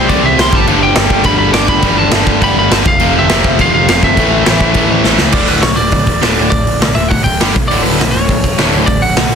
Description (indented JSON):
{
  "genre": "punk rock",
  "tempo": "205 BPM",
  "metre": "4/4",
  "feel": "straight",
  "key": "D major from 5.3 s",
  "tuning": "A4 = 440 Hz",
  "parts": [
    { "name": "lightly driven lead guitar", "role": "melody", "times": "0.0-9.3 s", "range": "B4 to D6", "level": "-16 LUFS", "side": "equal", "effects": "ping-pong delay" },
    { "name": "distorted electric guitar", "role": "riff", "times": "0.0-9.3 s", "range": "D2 to C4", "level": "-14 LUFS", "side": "equal", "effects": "overdrive" },
    { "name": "fuzz picked electric bass", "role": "bass", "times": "0.0-9.3 s", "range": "D1 to C#2", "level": "-18 LUFS", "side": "equal", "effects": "overdrive" },
    { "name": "raw garage drum kit", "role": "drums", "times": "0.1-9.3 s", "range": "crash cymbal, hi-hat, kick drum, snare drum", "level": "-13 LUFS", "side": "equal", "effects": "none" }
  ],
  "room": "little or no reverb",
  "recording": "dense, heavily limited modern master",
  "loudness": "-9 LUFS",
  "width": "side -7 dB against mid",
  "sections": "0.0-5.3 A section; 5.3-9.3 B section",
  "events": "drum fill 5.0",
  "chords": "0.0 C; 0.5 G; 2.9 F5; 4.2 A5; 5.3 D5; 7.4 G5; 7.6 N.C.; 7.7 D",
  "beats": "0.09 0.38 | 0.67 0.96 1.25 1.54 | 1.84 2.13 2.42 2.71 | 3.00 3.29 3.59 3.88 | 4.17 4.46 4.76 5.05 | 5.34 5.64 5.93 6.23 | 6.52 6.82 7.11 7.41 | 7.70 8.00 8.29 8.58 | 8.88 9.17"
}